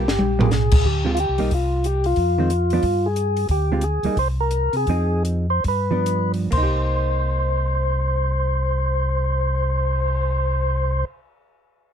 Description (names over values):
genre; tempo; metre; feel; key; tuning
soul jazz organ trio; 127-182 BPM; 4/4; swing 62% on 8ths; C minor; A4 = 440 Hz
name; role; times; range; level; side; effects
percussive tonewheel organ; melody; 0.0-11.1 s; F4 to C5; -23 LUFS; left 1 dB; slow rotary speaker, overdrive
hollow-body jazz guitar; accompaniment; 0.0-11.2 s; D3 to A#4; -25 LUFS; right 4 dB; none
mellow tonewheel organ; bass; 0.0-11.0 s; G1 to C3; -22 LUFS; equal; slow rotary speaker
compact cocktail drum kit; drums; 0.1-10.2 s; crash cymbal, cymbal swell, hi-hat, kick drum, snare drum, toms; -21 LUFS; equal; none
room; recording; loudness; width
little or no reverb; close, detailed microphones; -18 LUFS; side -8 dB against mid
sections
0.8-6.5 A section; 6.5-10.3 B section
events
drum fill 0.0-0.5; slowing down 3.5-6.5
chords
0.0 G7#9; 0.8 Dm7b5; 1.5 Csus4; 2.2 Fm7; 2.8 N.C.; 3.5 Dm7b5; 4.2 Abadd9/C (rootless); 4.9 Fm7; 5.6 G7; 6.5 Cm7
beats
0.19 0.52 | 0.85 1.18 1.51 1.84 | 2.17 2.50 2.83 3.16 | 3.50 3.83 4.17 4.51 | 4.87 5.25 5.64 6.07 | 6.52 6.99 7.46 7.93 | 8.41 8.88 9.35 9.82